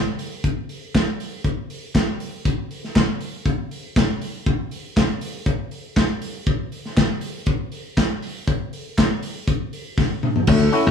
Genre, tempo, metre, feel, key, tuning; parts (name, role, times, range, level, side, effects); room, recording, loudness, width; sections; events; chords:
disco; 120 BPM; 4/4; straight; A major; A4 = 440 Hz
modern studio drum kit; drums; 0.2-10.9 s; crash cymbal, handclaps, hi-hat, kick drum, snare drum, toms; -21 LUFS; left 1 dB
wooden-headed alto flute; melody; 10.5-10.9 s; A4; -23 LUFS; equal
auto-wah clav; accompaniment; 10.5-10.9 s; D3 to F#4; -20 LUFS; left 3 dB
slap bass; bass; 10.5-10.9 s; D2; -16 LUFS; left 2 dB
cowbell; percussion; 10.5-10.6 s; -33 LUFS; right 6 dB
moderate stone room reverb, RT60 1.1 s; band playing live in one room; -20 LUFS; side -7 dB against mid
0.0-10.5 A section
drum fill 10.0-10.5